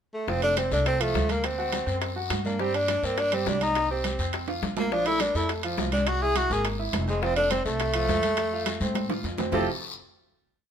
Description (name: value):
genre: Afro-Cuban jazz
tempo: 208 BPM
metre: 4/4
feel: straight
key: F major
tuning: A4 = 438 Hz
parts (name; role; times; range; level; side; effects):
- breathy tenor saxophone; melody; 0.1-9.7 s; G#3 to G#4; -26 LUFS; equal; none
- warm grand piano; accompaniment; 0.3-9.7 s; F3 to G5; -32 LUFS; right 1 dB; none
- upright bass; bass; 0.3-9.7 s; F1 to A2; -31 LUFS; equal; none
- bongos; percussion; 0.3-9.6 s; none; -37 LUFS; left 8 dB; none
- congas; percussion; 0.3-9.6 s; none; -35 LUFS; right 1 dB; none
- guiro; percussion; 0.3-9.6 s; none; -38 LUFS; left 5 dB; none
- timbales; percussion; 0.4-9.6 s; none; -34 LUFS; right 7 dB; none
room: light reverb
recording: minimal, uncompressed stereo recording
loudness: -24 LUFS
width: side -8 dB against mid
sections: 0.0-0.3 pickup bar; 0.3-9.5 A section; 9.5-10.7 final chord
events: drum fill 4.5-4.9, 8.8-9.5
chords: 0.3 F; 1.4 Daug7; 2.6 Gmadd11; 3.8 C5; 4.3 F5; 4.9 Bb5; 6.1 Caug7; 7.2 F; 9.5 Fmaj9